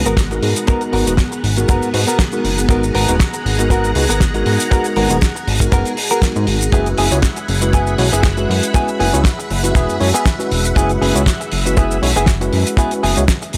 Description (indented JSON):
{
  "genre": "nu-disco, nu disco",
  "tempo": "119 BPM",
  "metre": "4/4",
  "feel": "swing 54% on 16ths",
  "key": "G# minor",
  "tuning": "A4 = 440 Hz",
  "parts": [
    { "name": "string machine, full ensemble", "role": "sustained chords", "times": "0.0-13.6 s", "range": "B3 to B5", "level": "-26 LUFS", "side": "equal", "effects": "ensemble chorus, sidechain pumping" },
    { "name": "fat analog bass", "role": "bass", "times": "0.0-13.6 s", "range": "D#1 to G#2", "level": "-20 LUFS", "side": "equal", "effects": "none" },
    { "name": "direct-recorded clean electric guitar", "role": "riff", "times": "0.1-13.5 s", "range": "B3 to A#4", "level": "-23 LUFS", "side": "equal", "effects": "subtle chorus, low-pass filter, analog delay" },
    { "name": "damped 70s drum kit", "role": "drums", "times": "0.1-13.6 s", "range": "hi-hat, snare drum", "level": "-24 LUFS", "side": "equal", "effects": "studio reverb" },
    { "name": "maracas", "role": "percussion", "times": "0.1-13.5 s", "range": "none", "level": "-30 LUFS", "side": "equal", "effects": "none" },
    { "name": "kick drum", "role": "drums", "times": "0.2-13.4 s", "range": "none", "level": "-16 LUFS", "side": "equal", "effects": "studio reverb" },
    { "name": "tine electric piano", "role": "accompaniment", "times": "0.3-13.2 s", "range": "G#3 to C#5", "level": "-24 LUFS", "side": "equal", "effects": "sidechain pumping, analog delay" }
  ],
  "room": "studio ambience",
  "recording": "dry, gritty hardware recording, transformer saturation",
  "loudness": "-16 LUFS",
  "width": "mono",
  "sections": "0.0-13.6 A section",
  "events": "none",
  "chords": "0.0 G#m9; 6.7 F#9sus4",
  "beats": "0.18 | 0.68 1.19 1.69 2.19 | 2.70 3.20 3.71 4.21 | 4.71 5.22 5.72 6.23 | 6.73 7.24 7.74 8.24 | 8.75 9.25 9.76 10.26 | 10.77 11.27 11.77 12.28 | 12.78 13.29"
}